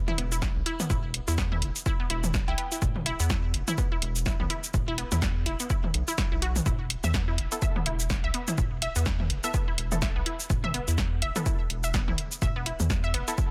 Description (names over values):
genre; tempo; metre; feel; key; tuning
minimal techno; 125 BPM; 4/4; swing 57% on 16ths; unclear; A4 = 440 Hz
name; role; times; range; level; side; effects
resonant blip pluck; riff; 0.1-13.3 s; B3 to E5; -37 LUFS; equal; chorus, vintage 12-bit sampler grit, sidechain pumping, delay
electronic toms; percussion; 0.1-12.9 s; none; -36 LUFS; equal; tape echo
round analog bass; bass; 0.2-13.2 s; E1 to E2; -32 LUFS; equal; sidechain pumping
punchy analog drum machine; drums; 0.2-13.5 s; cabasa, hi-hat, snare drum; -35 LUFS; equal; none
electronic kick drum; drums; 0.4-13.5 s; none; -32 LUFS; equal; none
soft synth bell; melody; 2.5-2.7 s; G5; -40 LUFS; equal; chorus, phaser, tape echo
filtered dub chord stab; stabs; 7.5-13.3 s; B3 to A4; -39 LUFS; equal; chorus, tape echo
room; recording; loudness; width
little or no reverb; dense, heavily limited modern master; -28 LUFS; mono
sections
0.0-13.5 A section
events
none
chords
0.0 E5